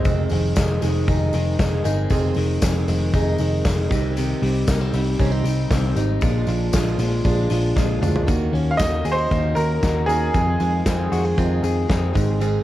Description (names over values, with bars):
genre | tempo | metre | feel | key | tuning
jangly indie pop | 117 BPM | 4/4 | straight | unclear | A4 = 440 Hz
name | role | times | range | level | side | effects
picked plugged-in steel-string acoustic guitar | accompaniment | 0.0-12.6 s | F2 to Ab4 | -26 LUFS | right 7 dB | cassette tape
direct-recorded clean electric guitar | arpeggios | 0.0-12.6 s | F2 to Bb4 | -26 LUFS | left 6 dB | cassette tape, tape echo
big rock drum kit | drums | 0.0-12.5 s | crash cymbal, hi-hat, kick drum, snare drum, toms | -24 LUFS | equal | cassette tape
tambourine | percussion | 0.0-12.5 s | none | -39 LUFS | left 9 dB | none
vintage muted picked electric bass | bass | 0.1-12.6 s | F1 to F2 | -22 LUFS | equal | none
bright upright piano | melody | 8.7-11.6 s | Ab4 to F5 | -23 LUFS | right 1 dB | cassette tape
room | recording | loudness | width
light reverb, studio ambience | home recording on cassette | -18 LUFS | side -14 dB against mid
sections
0.1-8.3 A section; 8.3-12.6 B section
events
drum fill 7.8-8.3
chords
0.1 Fm7; 3.9 Cm; 6.2 Bb7; 8.3 Ebm7; 10.3 Fm7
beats
| 0.05 0.57 1.08 1.59 | 2.11 2.62 3.13 3.65 | 4.16 4.68 5.19 5.71 | 6.22 6.73 7.25 7.76 | 8.28 8.79 9.31 9.83 | 10.34 10.86 11.38 11.89 | 12.41